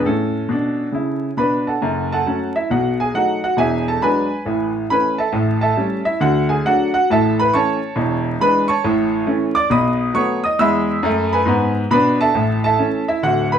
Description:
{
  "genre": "jazz, stride piano",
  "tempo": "137 BPM",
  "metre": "4/4",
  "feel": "swing 65% on 8ths",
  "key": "A major",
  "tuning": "A4 = 440 Hz",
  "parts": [
    { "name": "clear grand piano", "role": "solo", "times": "0.0-13.6 s", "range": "D1 to E6", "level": "-16 LUFS", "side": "equal", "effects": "none" }
  ],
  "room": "wet club reverb, RT60 0.5 s",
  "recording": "heard from further back in the room, vinyl crackle",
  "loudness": "-16 LUFS",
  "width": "side -8 dB against mid",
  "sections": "0.0-1.8 A section; 1.8-13.6 B section",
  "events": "none",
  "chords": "0.1 A; 1.8 F#m; 2.7 B7; 3.6 E9; 4.5 A; 5.3 A7; 6.2 D; 7.1 A; 8.0 E7; 8.8 A; 9.7 B7; 10.6 E7; 12.4 A"
}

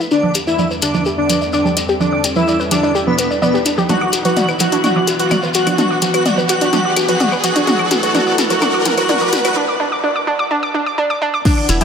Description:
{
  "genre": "melodic techno",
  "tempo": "127 BPM",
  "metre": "4/4",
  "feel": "straight",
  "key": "unclear",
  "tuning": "A4 = 440 Hz",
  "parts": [
    { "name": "dark analog pad", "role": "sustained chords", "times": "0.0-11.8 s", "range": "E2 to F#5", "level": "-26 LUFS", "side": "right 1 dB", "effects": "chorus, sidechain pumping" },
    { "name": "warbly dusty pluck", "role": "arpeggios", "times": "0.0-11.8 s", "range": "D4 to D6", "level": "-19 LUFS", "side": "equal", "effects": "chorus, cassette tape, sidechain pumping, tape echo" },
    { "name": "shekere", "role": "percussion", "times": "0.0-11.8 s", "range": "none", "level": "-25 LUFS", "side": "left 4 dB", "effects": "none" },
    { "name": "riser", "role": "sound effects", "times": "0.0-9.6 s", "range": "none", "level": "-23 LUFS", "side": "equal", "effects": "none" },
    { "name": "wide unison lead", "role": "melody", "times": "0.1-11.8 s", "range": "B3 to F#4", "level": "-19 LUFS", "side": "equal", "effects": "sidechain pumping, digital delay" },
    { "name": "airy dreamy lead", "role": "second line", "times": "0.1-11.8 s", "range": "B4 to F#5", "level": "-22 LUFS", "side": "left 1 dB", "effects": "chorus, phaser, cassette tape, sidechain pumping, tape echo" },
    { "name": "house drum kit", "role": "drums", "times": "0.2-11.8 s", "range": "claves, congas, crash cymbal, hi-hat, toms", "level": "-19 LUFS", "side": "right 1 dB", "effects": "overdrive, studio reverb" },
    { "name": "electronic kick drum", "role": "drums", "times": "11.5 s", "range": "none", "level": "-14 LUFS", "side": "equal", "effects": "overdrive, studio reverb" },
    { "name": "round analog bass", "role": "bass", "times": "11.7-11.8 s", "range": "E1", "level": "-16 LUFS", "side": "equal", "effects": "sidechain pumping" }
  ],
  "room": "moderate huge ambient reverb, RT60 4.5 s",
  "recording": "high-pass filter",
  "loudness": "-13 LUFS",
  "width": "side -7 dB against mid",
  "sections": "0.0-11.5 A section",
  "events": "build-up 0.0-11.5; riser 0.0-9.6; filter sweep on synth arpeggio sound 0.0-11.5; filter sweep on analog synth pad 0.0-11.5; drum fill 3.9-9.6; break 9.6-11.5",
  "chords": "0.1 G/E; 3.9 Bm/E; 7.7 A5/E"
}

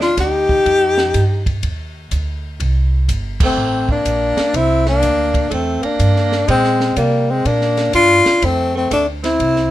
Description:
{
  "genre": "jazz, small-group swing and bop",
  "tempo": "124 BPM",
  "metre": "4/4",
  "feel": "swing 66% on 8ths",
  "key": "F mixolydian",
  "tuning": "A4 = 439 Hz",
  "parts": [
    { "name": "breathy tenor saxophone", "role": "melody", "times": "0.0-9.7 s", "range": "Bb3 to G4", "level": "-15 LUFS", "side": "left 2 dB", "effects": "none" },
    { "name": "clear alto saxophone", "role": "second line", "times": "0.0-9.7 s", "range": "G3 to Eb4", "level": "-23 LUFS", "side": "right 6 dB", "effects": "none" },
    { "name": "upright bass", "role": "bass", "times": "0.0-9.7 s", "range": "G1 to C3", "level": "-19 LUFS", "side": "right 1 dB", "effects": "none" },
    { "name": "compact cocktail drum kit", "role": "drums", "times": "0.0-9.7 s", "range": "crash cymbal, hi-hat, kick drum, ride cymbal, snare drum", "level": "-24 LUFS", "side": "right 1 dB", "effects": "none" }
  ],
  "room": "light reverb",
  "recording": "minimal, uncompressed stereo recording",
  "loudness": "-13 LUFS",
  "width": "side -14 dB against mid",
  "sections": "0.0-9.7 A section",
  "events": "band accent 3.3",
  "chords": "0.0 F7sus2; 2.6 C13; 6.5 Bb13; 8.4 Dm7"
}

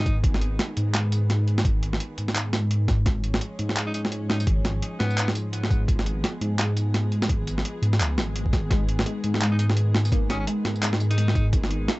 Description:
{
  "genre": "half-time drum and bass",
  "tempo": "170 BPM",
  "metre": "4/4",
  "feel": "swing 59% on 16ths, half-time",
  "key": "G# dorian",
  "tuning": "A4 = 441 Hz",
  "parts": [
    { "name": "raspy alto saxophone", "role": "melody", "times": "0.0-0.2, 3.9-5.3, 9.5-11.5 s", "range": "B3 to D#4", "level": "-35 LUFS", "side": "equal", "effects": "tape echo" },
    { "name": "dark studio string section", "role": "sustained chords", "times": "0.0-12.0 s", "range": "D#3 to G#4", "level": "-35 LUFS", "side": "right 1 dB", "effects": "sidechain pumping, cassette tape" },
    { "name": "dark detuned saw bass", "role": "bass", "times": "0.0-11.9 s", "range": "G#1 to G#2", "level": "-24 LUFS", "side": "equal", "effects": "none" },
    { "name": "boom bap sampler-style drum kit", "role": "drums", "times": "0.1-12.0 s", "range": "handclaps, hi-hat, snare drum, tambourine", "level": "-27 LUFS", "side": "equal", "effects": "overdrive, cassette tape" },
    { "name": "electronic kick drum", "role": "drums", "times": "0.1-11.6 s", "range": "none", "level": "-23 LUFS", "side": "equal", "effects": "overdrive, cassette tape" },
    { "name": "swell", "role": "sound effects", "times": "8.2-8.7 s", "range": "none", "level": "-38 LUFS", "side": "left 5 dB", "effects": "none" },
    { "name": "warbly dusty pluck", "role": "arpeggios", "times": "8.7-12.0 s", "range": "G#3 to G#4", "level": "-31 LUFS", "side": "left 2 dB", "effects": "wide subtle chorus, cassette tape, tape echo" }
  ],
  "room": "light reverb",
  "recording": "home recording on cassette, nothing above 8.0 kHz",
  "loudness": "-22 LUFS",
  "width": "side -21 dB against mid",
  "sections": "0.0-12.0 A section",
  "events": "none",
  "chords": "0.0 G#m; 3.1 C#/G#; 8.7 G#m"
}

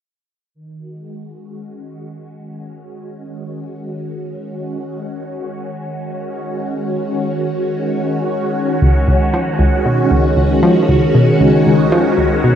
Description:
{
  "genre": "ambient, sequencer-driven space music",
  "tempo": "116 BPM",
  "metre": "4/4",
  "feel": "straight",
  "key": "unclear",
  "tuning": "A4 = 440 Hz",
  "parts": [
    { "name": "phased string machine", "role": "sustained chords", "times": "0.5-12.6 s", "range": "Eb3 to Gb4", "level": "-17 LUFS", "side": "equal", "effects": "ensemble chorus, phaser" },
    { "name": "analog pluck", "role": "riff", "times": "8.8-12.6 s", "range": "Db2 to F3", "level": "-14 LUFS", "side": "equal", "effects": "chorus, cassette tape, analog delay" }
  ],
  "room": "moderate plate reverb, RT60 2.4 s",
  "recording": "dark, warm production",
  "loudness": "-13 LUFS",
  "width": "side -9 dB against mid",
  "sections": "0.5-12.6 A section",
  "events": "fade-in on string machine 0.5-12.6",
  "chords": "0.5 Dbsus4"
}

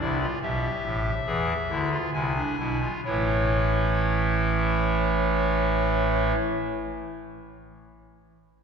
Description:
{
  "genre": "classical, baroque-style 3-part fugue for pipe organ",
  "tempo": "64-74 BPM",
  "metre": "4/4",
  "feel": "straight",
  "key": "unclear",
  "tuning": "A4 = 440 Hz",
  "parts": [
    { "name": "pipe organ, clarinet reed", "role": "solo", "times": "0.0-6.4 s", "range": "A1 to G#5", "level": "-23 LUFS", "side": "equal", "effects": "none" }
  ],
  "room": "wet church reverb, RT60 3.5 s",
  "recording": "heard from further back in the room",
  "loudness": "-23 LUFS",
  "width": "side -6 dB against mid",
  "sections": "0.0-3.0 A section; 3.0-6.8 B section",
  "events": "slowing down 0.0-3.0",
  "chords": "0.0 Am; 1.3 E7; 3.0 A"
}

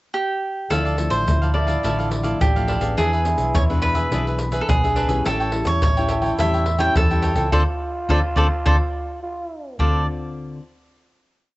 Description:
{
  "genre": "samba and choro",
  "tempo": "106 BPM",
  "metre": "4/4",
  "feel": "straight",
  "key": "D minor",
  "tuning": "A4 = 441 Hz",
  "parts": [
    { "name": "cavaquinho", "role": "melody", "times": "0.1-10.1 s", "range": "G4 to G5", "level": "-23 LUFS", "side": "right 1 dB", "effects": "cassette tape" },
    { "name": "growling trombone", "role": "second line", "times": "0.7-10.1 s", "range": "D4 to F4", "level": "-29 LUFS", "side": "right 2 dB", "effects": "none" },
    { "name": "cavaquinho", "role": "accompaniment", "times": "0.7-10.0 s", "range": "D4 to G5", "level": "-28 LUFS", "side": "right 1 dB", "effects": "none" },
    { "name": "nylon-string guitar", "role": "accompaniment", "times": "0.7-10.6 s", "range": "A2 to A4", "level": "-28 LUFS", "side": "left 3 dB", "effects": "none" },
    { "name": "hollow-body short-scale fingered electric bass", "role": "bass", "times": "0.7-10.1 s", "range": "A1 to E2", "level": "-23 LUFS", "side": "equal", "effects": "none" },
    { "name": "tube shaker, surdo and pandeiro", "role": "percussion", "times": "0.7-9.9 s", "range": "none", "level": "-23 LUFS", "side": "equal", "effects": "none" }
  ],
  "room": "light reverb, small room reverb",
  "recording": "home recording on cassette, nothing above 8.0 kHz",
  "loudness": "-18 LUFS",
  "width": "side -19 dB against mid",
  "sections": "0.0-0.7 pickup bar; 0.7-9.8 A section; 9.8-11.6 final chord",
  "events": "band accent 7.5-9.8",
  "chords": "0.0 N.C.; 0.7 Dmadd9; 3.0 E7; 5.3 A7; 7.5 Dm7"
}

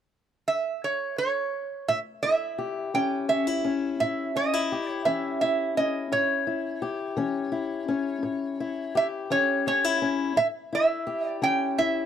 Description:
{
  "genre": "acoustic country blues, solo or duo",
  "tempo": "57 BPM (dotted quarters)",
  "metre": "12/8",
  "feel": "straight",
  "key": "A mixolydian",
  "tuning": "A4 = 440 Hz",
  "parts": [
    { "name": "metal-body resonator slide guitar", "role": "melody", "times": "0.5-12.1 s", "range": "C#5 to G5", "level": "-25 LUFS", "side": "right 3 dB", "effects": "none" },
    { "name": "fingerpicked steel-string acoustic guitar", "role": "accompaniment", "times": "1.9-12.1 s", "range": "A2 to G4", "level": "-28 LUFS", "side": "left 5 dB", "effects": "none" }
  ],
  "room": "little or no reverb",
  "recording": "dry, close 1970s-style studio recording",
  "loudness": "-24 LUFS",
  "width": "side -9 dB against mid",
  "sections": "0.0-1.9 A section; 1.9-12.1 B section",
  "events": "none",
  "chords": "0.0 N.C.; 1.9 A7"
}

